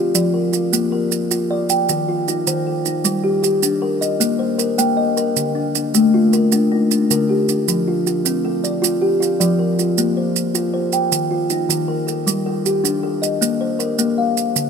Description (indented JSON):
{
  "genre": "southern african traditional, mbira-style interlocking cycle",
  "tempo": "104 BPM (dotted quarters)",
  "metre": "12/8",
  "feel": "straight",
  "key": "Bb major",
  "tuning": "A4 = 440 Hz",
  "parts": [
    { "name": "kalimba", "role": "arpeggios", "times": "0.0-14.7 s", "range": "D3 to G5", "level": "-16 LUFS", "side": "left 1 dB", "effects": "none" },
    { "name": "maracas", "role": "percussion", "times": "0.1-14.7 s", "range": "none", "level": "-22 LUFS", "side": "right 12 dB", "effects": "none" }
  ],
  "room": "wet huge ambient reverb, RT60 7.0 s",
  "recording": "none",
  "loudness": "-16 LUFS",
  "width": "side -6 dB against mid",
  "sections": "0.0-10.0 A section; 10.0-14.7 B section",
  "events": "none",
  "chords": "0.0 N.C.; 0.7 Bb; 1.9 Eb; 3.0 Gm; 4.2 Eb6/Bb; 5.4 Dm; 7.7 F; 10.0 Bb5; 11.1 Eb; 12.3 Gm; 13.4 Bb5",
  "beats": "0.15 | 0.73 1.31 1.89 2.47 | 3.05 3.63 4.21 4.79 | 5.37 5.94 6.52 7.10 | 7.67 8.25 8.82 9.40 | 9.97 10.55 11.12 11.70 | 12.27 12.85 13.42 13.99 | 14.56"
}